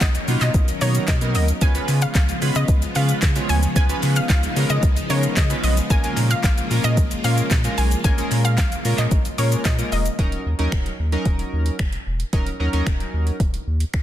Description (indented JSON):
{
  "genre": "dance-pop",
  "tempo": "112 BPM",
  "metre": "4/4",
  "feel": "straight",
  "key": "Eb minor",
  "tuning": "A4 = 441 Hz",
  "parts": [
    { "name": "analog pluck", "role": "melody", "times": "0.0-10.0 s", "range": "Db5 to Ab5", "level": "-27 LUFS", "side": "left 1 dB", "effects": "chorus, sidechain pumping, ping-pong delay" },
    { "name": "string machine, violas", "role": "sustained chords", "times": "0.0-10.1 s", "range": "Db3 to Bb4", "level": "-28 LUFS", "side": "left 1 dB", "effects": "ensemble chorus, sidechain pumping" },
    { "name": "saturated sub bass", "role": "bass", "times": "0.0-14.0 s", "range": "Eb1 to Db3", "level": "-21 LUFS", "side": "equal", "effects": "sidechain pumping" },
    { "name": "smooth R&B drum kit", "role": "drums", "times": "0.0-14.0 s", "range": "finger snaps, handclaps, hi-hat, kick drum, shaker, snare drum", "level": "-21 LUFS", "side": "equal", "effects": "soft clipping on snare" },
    { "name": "group handclap", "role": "percussion", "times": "0.0-9.8 s", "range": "none", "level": "-36 LUFS", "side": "left 6 dB", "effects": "none" },
    { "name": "chorused retro synth keys", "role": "accompaniment", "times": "0.3-13.4 s", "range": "F#3 to Db5", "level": "-27 LUFS", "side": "right 1 dB", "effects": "sidechain pumping" }
  ],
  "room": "little or no reverb",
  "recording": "dense, heavily limited modern master",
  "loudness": "-18 LUFS",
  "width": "side -12 dB against mid",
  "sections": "0.0-10.2 A section; 10.2-14.0 B section",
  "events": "drop 0.0-10.2",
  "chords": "0.0 Bmaj7; 1.6 Db7; 5.9 Bbm7; 10.2 Ebm7"
}